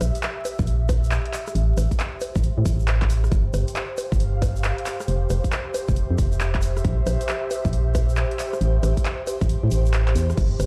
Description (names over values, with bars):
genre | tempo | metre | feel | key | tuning
UK garage, two-step garage | 136 BPM | 4/4 | swing 64% on 16ths | unclear | A4 = 440 Hz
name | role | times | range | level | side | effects
organ-like FM bass | bass | 0.0-10.7 s | F1 to A2 | -23 LUFS | equal | none
punchy analog drum machine | drums | 0.0-10.7 s | bongos, crash cymbal, handclaps, hi-hat, rim click | -31 LUFS | equal | overdrive, studio reverb
tube shaker | percussion | 0.0-10.7 s | none | -45 LUFS | equal | none
airy breathy pad | texture | 0.0-10.7 s | G4 to F5 | -33 LUFS | equal | chorus, sidechain pumping
electronic kick drum | drums | 0.6-10.5 s | none | -25 LUFS | equal | studio reverb
room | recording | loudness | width
little or no reverb | played on a big sound system in a bare room, large studio reverb, vinyl crackle | -23 LUFS | mono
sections
0.0-10.7 A section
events
kick drops out 9.5-10.4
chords
0.0 Edim/Bb; 1.6 Am7; 3.3 G7sus4; 4.9 Fsus2; 6.8 C7/Bb; 8.6 Am7